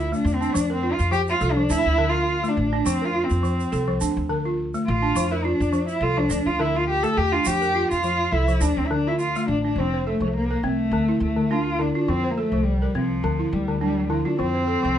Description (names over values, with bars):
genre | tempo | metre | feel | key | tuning
west african traditional, West African string and xylophone music | 104 BPM | 4/4 | swing 54% on 16ths | F major | A4 = 440 Hz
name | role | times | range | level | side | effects
dark cello | melody | 0.0-15.0 s | F3 to A4 | -23 LUFS | left 1 dB | none
balafon | arpeggios | 0.0-15.0 s | D3 to C5 | -25 LUFS | equal | none
upright bass | bass | 0.0-15.0 s | F1 to F2 | -27 LUFS | equal | none
egg shaker | percussion | 0.1-9.4 s | none | -35 LUFS | right 6 dB | none
room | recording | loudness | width
light reverb | nothing above 10.6 kHz | -20 LUFS | side -10 dB against mid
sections
0.0-9.8 A section; 9.8-15.0 B section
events
cello solo 0.0-9.8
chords
0.0 Dm; 0.5 F; 1.7 Dm; 2.9 F; 4.0 Dm; 5.2 F; 6.3 Dm; 7.5 F; 8.6 Dm; 9.8 F; 10.9 Dm; 12.1 F; 13.2 Dm; 14.4 F